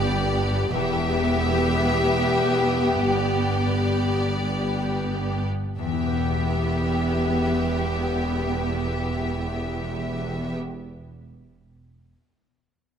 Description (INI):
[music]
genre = cinematic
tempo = 40-57 BPM (dotted quarters)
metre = 6/8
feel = rubato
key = E minor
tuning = A4 = 439 Hz
[part]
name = clear studio violin section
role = melody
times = 0.0-10.6 s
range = D5 to E5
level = -32 LUFS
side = left 2 dB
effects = none
[part]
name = rich studio violin section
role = second line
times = 0.0-10.6 s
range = G4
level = -30 LUFS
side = left 2 dB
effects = none
[part]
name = rich studio viola section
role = accompaniment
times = 0.0-10.6 s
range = B3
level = -29 LUFS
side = left 1 dB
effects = none
[part]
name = warm French horn section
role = sustained chords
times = 0.0-10.6 s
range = B3 to G4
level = -29 LUFS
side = left 1 dB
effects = none
[part]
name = concert harp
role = arpeggios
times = 0.0-10.9 s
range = E2 to G5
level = -35 LUFS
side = left 9 dB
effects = none
[part]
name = rich studio cello section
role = bass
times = 0.0-10.6 s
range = E2 to G2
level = -28 LUFS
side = right 2 dB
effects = none
[part]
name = rich studio double bass section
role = bass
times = 0.0-10.5 s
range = E1 to G1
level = -30 LUFS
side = right 3 dB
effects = none
[sound]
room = moderate scoring stage reverb, RT60 2.0 s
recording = lossy compression artefacts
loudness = -21 LUFS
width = side -8 dB against mid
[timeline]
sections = 0.0-5.8 A section; 5.8-11.6 B section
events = slowing down 0.0-5.8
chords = 0.0 G; 0.7 Em; 3.0 G; 5.8 Em